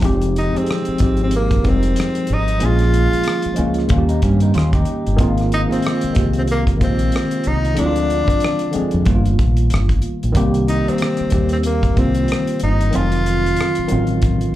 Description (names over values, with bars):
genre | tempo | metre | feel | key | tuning
R&B, neo-soul | 93 BPM | 4/4 | swing 59% on 16ths | F minor | A4 = 440 Hz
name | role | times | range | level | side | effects
mellow tine electric piano | accompaniment | 0.0-14.6 s | D3 to Bb4 | -20 LUFS | equal | medium stereo tremolo, slapback echo
deep dub fingered electric bass | bass | 0.0-14.5 s | F1 to G2 | -18 LUFS | equal | none
damped 70s drum kit | drums | 0.0-14.5 s | hi-hat, kick drum, rim click | -21 LUFS | equal | none
breathy tenor saxophone | melody | 0.4-14.2 s | Bb3 to F4 | -22 LUFS | equal | slapback echo, tape echo
electric guitar through a small old amp | second line | 4.1-5.2 s | Bb3 to G4 | -28 LUFS | right 3 dB | slapback echo
room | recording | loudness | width
light reverb | live gig heard through the venue's PA, club reverb | -15 LUFS | side -14 dB against mid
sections
0.0-14.6 A section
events
none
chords
0.0 Fm9; 2.6 Bbm7; 3.9 Eb7; 5.2 Ab69; 7.8 Dm7b5; 9.1 G7alt; 10.3 Cm7; 12.9 F7b9